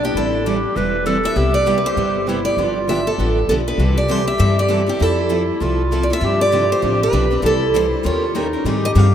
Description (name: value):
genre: acoustic string swing (jazz manouche)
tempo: 197 BPM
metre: 4/4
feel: swing 59% on 8ths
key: C major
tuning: A4 = 440 Hz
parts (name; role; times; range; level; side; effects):
- picked steel-string acoustic guitar; melody; 0.0-9.1 s; G4 to F5; -20 LUFS; right 2 dB; none
- breathy clarinet; second line; 0.0-9.1 s; D4 to B4; -21 LUFS; equal; none
- picked steel-string acoustic guitar; accompaniment; 0.0-9.1 s; C3 to Bb4; -26 LUFS; left 5 dB; none
- upright bass; bass; 0.0-9.1 s; E1 to Ab2; -20 LUFS; left 1 dB; none
- picked steel-string acoustic guitar; accompaniment; 0.2-9.1 s; C3 to Bb4; -25 LUFS; right 4 dB; none
room: wet cathedral reverb, RT60 5.7 s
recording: in a vast, echoing space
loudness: -15 LUFS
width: side -9 dB against mid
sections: 0.0-8.7 A section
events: none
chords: 0.1 Am7; 1.4 Cmaj7; 2.6 G9; 3.8 C6; 5.0 Fmaj7; 6.2 G9sus4; 7.4 C6; 8.1 Eb7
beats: | 0.15 0.45 0.76 1.06 | 1.36 1.67 1.97 2.27 | 2.58 2.88 3.18 3.49 | 3.79 4.09 4.40 4.70 | 5.01 5.31 5.62 5.92 | 6.22 6.53 6.83 7.14 | 7.44 7.75 8.05 8.36 | 8.66 8.96